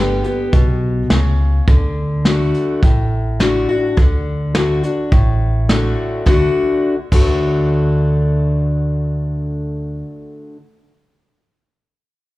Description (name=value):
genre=honky-tonk and classic country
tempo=105 BPM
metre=4/4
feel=straight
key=D major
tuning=A4 = 440 Hz
part: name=picked steel-string acoustic guitar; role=accompaniment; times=0.0-10.6 s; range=G2 to G4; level=-19 LUFS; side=left 2 dB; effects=none
part: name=upright bass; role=bass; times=0.0-10.0 s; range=G1 to D2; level=-18 LUFS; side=equal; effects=none
part: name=vintage brush drum kit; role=drums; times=0.2-7.3 s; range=crash cymbal, hi-hat, kick drum, snare drum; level=-16 LUFS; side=equal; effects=none
room=moderate large studio reverb, RT60 1.4 s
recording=heard from further back in the room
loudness=-14 LUFS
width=side -18 dB against mid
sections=0.0-6.3 A section; 6.3-8.5 B section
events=none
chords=0.0 G; 1.7 D